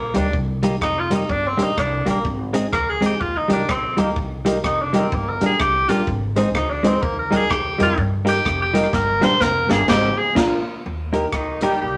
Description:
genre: ska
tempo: 126 BPM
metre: 4/4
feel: swing 61% on 8ths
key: Eb major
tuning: A4 = 439 Hz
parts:
  - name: clear tenor saxophone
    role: melody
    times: 0.0-10.8 s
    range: Bb3 to C5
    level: -23 LUFS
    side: equal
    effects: none
  - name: upright bass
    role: bass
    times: 0.0-12.0 s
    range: F1 to G2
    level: -29 LUFS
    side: equal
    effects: none
  - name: clean electric guitar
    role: accompaniment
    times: 0.1-11.7 s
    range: G3 to Bb4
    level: -25 LUFS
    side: equal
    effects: none
  - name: swinging big-band drum kit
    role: drums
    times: 0.1-11.7 s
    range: crash cymbal, hi-hat, kick drum, rim click, snare drum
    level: -29 LUFS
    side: equal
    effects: none
  - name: dark upright piano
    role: stabs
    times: 3.5-11.7 s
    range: D4 to C5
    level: -27 LUFS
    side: equal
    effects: none
  - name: mellow horn section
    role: melody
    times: 11.3-12.0 s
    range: Eb3 to G4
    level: -24 LUFS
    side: equal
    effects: none
room: wet club reverb, RT60 0.7 s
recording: none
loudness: -20 LUFS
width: mono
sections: 0.0-10.8 A section; 10.8-12.0 B section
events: tenor saxophone solo 0.0-10.8; drum fill 8.9-10.8; band accent 9.9-10.8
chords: 0.0 Eb; 1.3 Gm; 2.2 Ab; 3.2 Eb; 5.1 Gm; 6.1 Ab; 7.0 Eb; 8.9 Gm; 9.9 Ab; 10.4 Bb; 10.8 Eb

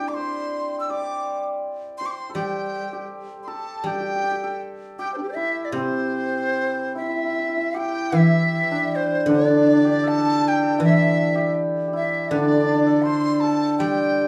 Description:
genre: chinese traditional, Chinese chamber ensemble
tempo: 80 BPM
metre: 4/4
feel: rubato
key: C gong mode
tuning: A4 = 440 Hz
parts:
  - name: breathy bright large dizi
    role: melody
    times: 0.0-14.3 s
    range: D4 to E6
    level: -28 LUFS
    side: equal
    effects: none
  - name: hammered dulcimer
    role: second line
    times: 0.0-14.3 s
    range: C4 to D5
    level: -26 LUFS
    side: equal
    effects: none
  - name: guzheng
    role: accompaniment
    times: 2.3-14.3 s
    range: C3 to G3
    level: -26 LUFS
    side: equal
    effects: none
room: moderate booth ambience, RT60 0.3 s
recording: small room reverb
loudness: -22 LUFS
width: mono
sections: 0.0-7.7 A section; 7.7-14.3 B section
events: none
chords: none

